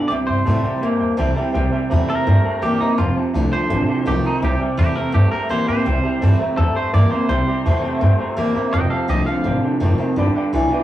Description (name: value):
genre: rockabilly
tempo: 167 BPM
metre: 4/4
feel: straight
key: C mixolydian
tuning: A4 = 440 Hz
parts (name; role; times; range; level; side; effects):
- twangy electric guitar; melody; 0.0-9.6 s; Eb4 to G5; -24 LUFS; equal; none
- picked steel-string acoustic guitar; accompaniment; 0.0-10.8 s; F2 to F4; -24 LUFS; equal; none
- warm upright piano; accompaniment; 0.0-10.8 s; B4 to C6; -29 LUFS; left 2 dB; none
- electric guitar through a small old amp; riff; 0.0-10.8 s; F2 to Bb3; -22 LUFS; right 1 dB; none
- upright bass; bass; 0.1-10.7 s; F1 to Bb2; -19 LUFS; equal; none
room: moderate studio reverb, RT60 0.6 s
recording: rough rehearsal-room recording, warm saturation, small room ambience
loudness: -16 LUFS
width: side -13 dB against mid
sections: 0.0-1.5 A section; 1.5-10.8 B section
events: clean electric guitar solo 1.5-10.8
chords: 0.1 C; 3.0 F; 4.4 C; 8.7 F; 10.2 G7